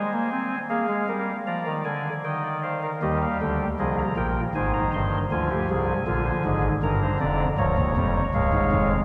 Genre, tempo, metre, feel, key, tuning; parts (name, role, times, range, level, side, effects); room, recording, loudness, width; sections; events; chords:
classical, baroque-style 4-part fugue for pipe organ; 78 BPM; 3/4; straight; A4 = 439 Hz
chamber organ, soft reed; solo; 0.0-9.0 s; Db1 to C6; -25 LUFS; equal
wet cathedral reverb, RT60 4.8 s; heard from further back in the room; -25 LUFS; mono
0.0-3.0 A section; 3.0-9.0 B section
0.0 Abadd9; 0.7 Bb7; 2.2 Eb; 4.6 Abmaj7; 5.3 Ddim; 6.8 Gm7; 7.6 Bbm/Db